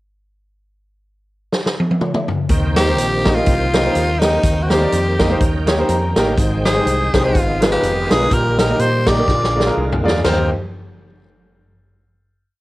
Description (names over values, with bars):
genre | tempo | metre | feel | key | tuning
uptempo gospel | 124 BPM | 4/4 | swing 57% on 8ths | Eb major | A4 = 441 Hz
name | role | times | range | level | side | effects
swinging big-band drum kit | drums | 1.5-10.4 s | crash cymbal, hi-hat, kick drum, snare drum, toms | -18 LUFS | equal | cassette tape
clear concert grand piano | accompaniment | 2.5-10.5 s | Eb2 to Bb5 | -20 LUFS | equal | none
bright tonewheel organ | sustained chords | 2.5-10.5 s | D3 to G5 | -25 LUFS | right 1 dB | fast rotary speaker, overdrive, chorus vibrato
fingered electric bass | bass | 2.5-10.5 s | F1 to Bb2 | -20 LUFS | equal | none
raspy tenor saxophone | melody | 2.8-10.5 s | Eb4 to D5 | -20 LUFS | left 1 dB | cassette tape
room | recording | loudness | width
moderate booth ambience, RT60 0.2 s | home recording on cassette, faint mains hum | -14 LUFS | side -18 dB against mid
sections
0.6-2.5 pickup bar; 2.5-10.2 verse; 10.2-12.2 final chord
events
drum fill 1.5-2.5, 9.3-10.2; grand piano fill 5.6-6.4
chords
0.6 N.C.; 2.5 Eb6; 4.4 Cm7/Eb; 5.4 Eb7; 6.4 Abmaj7; 7.3 Abm6; 8.3 Eb/Bb; 9.3 Bb7; 10.2 Eb6